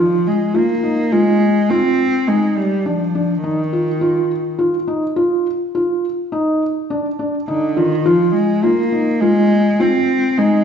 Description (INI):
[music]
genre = contemporary instrumental, chamber music in an uneven meter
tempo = 104 BPM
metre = 7/4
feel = straight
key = F dorian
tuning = A4 = 440 Hz
[part]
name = warm cello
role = melody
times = 0.0-10.6 s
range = D3 to C4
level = -16 LUFS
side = left 1 dB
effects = none
[part]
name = felt-muted upright piano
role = arpeggios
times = 0.0-10.6 s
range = D4 to F4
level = -17 LUFS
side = right 1 dB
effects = none
[sound]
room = wet recital hall reverb, RT60 1.5 s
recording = heard from further back in the room, nothing above 7.8 kHz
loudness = -14 LUFS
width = side -7 dB against mid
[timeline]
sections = 0.0-10.6 A section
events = none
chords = 0.0 Fm7